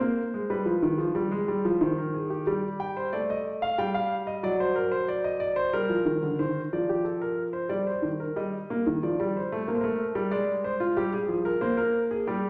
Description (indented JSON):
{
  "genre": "classical, baroque-style two-part invention for grand piano",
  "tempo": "92 BPM",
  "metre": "3/4",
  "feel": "straight",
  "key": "C minor",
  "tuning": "A4 = 438 Hz",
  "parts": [
    { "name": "warm grand piano", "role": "solo", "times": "0.0-12.5 s", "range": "D3 to G5", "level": "-28 LUFS", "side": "equal", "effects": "none" }
  ],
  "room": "wet recital hall reverb, RT60 1.2 s",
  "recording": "none",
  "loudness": "-28 LUFS",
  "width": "mono",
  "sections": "0.0-6.4 A section; 6.4-12.5 B section",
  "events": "none",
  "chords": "0.0 Abadd9; 0.5 G7; 1.8 Cm/Eb; 2.5 G5; 3.8 Ebadd9/G; 4.4 D7/F#; 5.7 Gm; 6.4 Cm/Eb; 7.7 Gm; 8.4 Eb; 9.7 Gmadd9; 10.3 Fm/Ab; 11.6 Bbsus2"
}